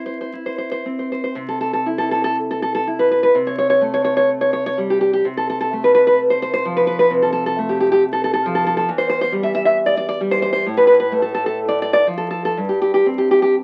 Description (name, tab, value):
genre	romantic piece for solo classical guitar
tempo	56-70 BPM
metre	4/4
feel	rubato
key	C major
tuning	A4 = 440 Hz
part	nylon-string guitar	solo	0.0-13.6 s	E2 to E5	-18 LUFS	equal	none
room	moderate studio reverb, RT60 0.6 s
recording	very old 78 rpm record, vinyl crackle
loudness	-18 LUFS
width	mono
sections	0.0-1.4 A section; 1.4-13.6 A section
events	none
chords	0.0 C; 3.3 A7#9/B#; 5.3 F/C; 8.9 Em7; 10.7 F/A; 12.6 C5/G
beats	0.32 | 1.37 2.36 3.34 4.30 | 5.26 6.18 7.11 8.03 | 8.89 9.77 10.66 11.59 | 12.56 13.55